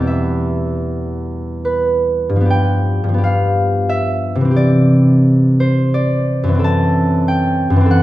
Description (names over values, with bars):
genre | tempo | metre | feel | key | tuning
classical, solo harp piece | 66-94 BPM | 3/4 | rubato | unclear | A4 = 442 Hz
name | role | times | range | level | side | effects
concert harp | solo | 0.0-8.0 s | E2 to A5 | -13 LUFS | equal | none
room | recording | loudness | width
wet recital hall reverb, RT60 1.4 s | none | -13 LUFS | side -15 dB against mid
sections
0.0-2.5 A section; 2.5-8.0 B section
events
none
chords
0.1 Em; 2.5 G7; 4.6 C; 6.6 F#m7b5